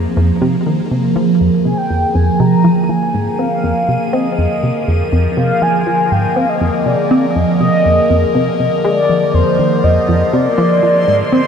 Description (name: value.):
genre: ambient.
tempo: 121 BPM.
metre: 4/4.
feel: straight.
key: F dorian.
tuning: A4 = 439 Hz.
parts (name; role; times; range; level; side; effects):
evolving wavetable pad; sustained chords; 0.0-11.5 s; D3 to C5; -16 LUFS; right 1 dB; phaser, built-in reverb.
plucky analog bass; riff; 0.0-11.4 s; F2 to C4; -16 LUFS; equal; analog chorus, ping-pong delay.
bubbling stepped-filter texture; texture; 0.0-11.5 s; C5 to Eb7; -34 LUFS; left 1 dB; chorus, built-in reverb.
mellow horn-like synth lead; melody; 1.7-11.5 s; C5 to Bb5; -16 LUFS; equal; chorus, ping-pong delay.
room: wet huge ambient reverb, RT60 8.4 s.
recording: none.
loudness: -11 LUFS.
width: side -7 dB against mid.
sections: 0.0-11.5 A section.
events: fade-in on synth texture 0.0-11.5.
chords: 0.0 Fm7.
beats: 0.41 0.91 | 1.41 1.90 2.40 2.89 | 3.39 3.88 4.38 4.88 | 5.37 5.87 6.36 6.86 | 7.36 7.85 8.35 8.84 | 9.34 9.84 10.33 10.83 | 11.32.